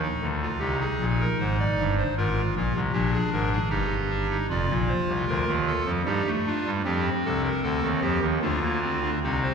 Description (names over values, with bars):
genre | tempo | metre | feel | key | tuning
classical, baroque-style 3-part fugue for pipe organ | 76 BPM | 3/4 | straight | Eb major | A4 = 445 Hz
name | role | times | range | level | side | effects
pipe organ, clarinet reed | solo | 0.0-9.5 s | F1 to D5 | -23 LUFS | equal | none
room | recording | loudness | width
wet concert hall reverb, RT60 2.2 s | heard from further back in the room | -23 LUFS | side -6 dB against mid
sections
0.0-9.2 A section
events
none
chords
0.0 Eb; 1.4 Ab; 2.2 Bb7/Ab; 3.7 Eb/G; 4.5 Bb/F; 6.1 Eb/G; 6.8 F7; 8.4 Bb/D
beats
0.62 1.40 | 2.18 2.95 3.71 | 4.49 5.26 6.05 | 6.84 7.63 8.42 | 9.22